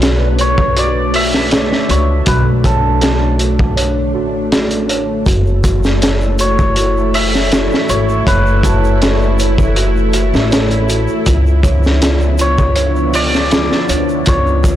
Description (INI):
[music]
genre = trip hop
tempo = 80 BPM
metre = 4/4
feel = straight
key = F# minor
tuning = A4 = 440 Hz
[part]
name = string machine, cellos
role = sustained chords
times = 0.0-14.8 s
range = E#3 to B4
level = -20 LUFS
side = equal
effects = ensemble chorus
[part]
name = small celesta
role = arpeggios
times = 0.0-14.8 s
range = E#4 to C#5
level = -22 LUFS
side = right 2 dB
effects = ping-pong delay
[part]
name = upright bass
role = bass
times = 0.0-14.8 s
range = F#1 to D2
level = -16 LUFS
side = equal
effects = none
[part]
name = crunchy breakbeat drum kit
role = drums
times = 0.0-14.8 s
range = hi-hat, kick drum, snare drum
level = -16 LUFS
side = equal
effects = none
[part]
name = hammered dulcimer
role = melody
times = 0.4-14.8 s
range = A4 to E5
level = -19 LUFS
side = equal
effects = tape echo
[part]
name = tube shaker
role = percussion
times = 5.3-14.8 s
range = none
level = -35 LUFS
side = right 5 dB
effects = none
[part]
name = bowed-like drone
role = texture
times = 6.5-14.8 s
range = E4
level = -25 LUFS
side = equal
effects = built-in reverb
[sound]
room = small room ambience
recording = blown-out, overdriven recording, overdrive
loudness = -11 LUFS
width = side -12 dB against mid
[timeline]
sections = 0.0-14.8 A section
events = none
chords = 0.0 Bm9; 5.3 F#m7; 11.3 C#7b9